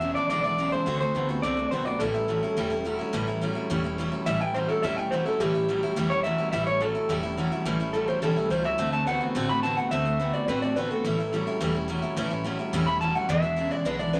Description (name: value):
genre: rockabilly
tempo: 212 BPM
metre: 4/4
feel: straight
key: A mixolydian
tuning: A4 = 440 Hz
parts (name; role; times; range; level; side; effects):
- electric guitar through a small old amp; melody; 0.0-14.2 s; G4 to B5; -29 LUFS; equal; none
- picked steel-string acoustic guitar; accompaniment; 0.0-14.2 s; E2 to F#4; -32 LUFS; equal; none
- electric guitar through a small old amp; riff; 0.0-14.2 s; E2 to C4; -35 LUFS; equal; none
- upright bass; bass; 0.0-14.2 s; E1 to D2; -38 LUFS; equal; none
room: wet club ambience, RT60 0.5 s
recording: none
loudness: -27 LUFS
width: mono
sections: 0.0-4.3 A section; 4.3-14.2 B section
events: clean electric guitar solo 4.3-14.2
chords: 0.0 E7; 0.9 D7; 2.0 A7; 8.8 D7; 11.0 A7; 13.3 E7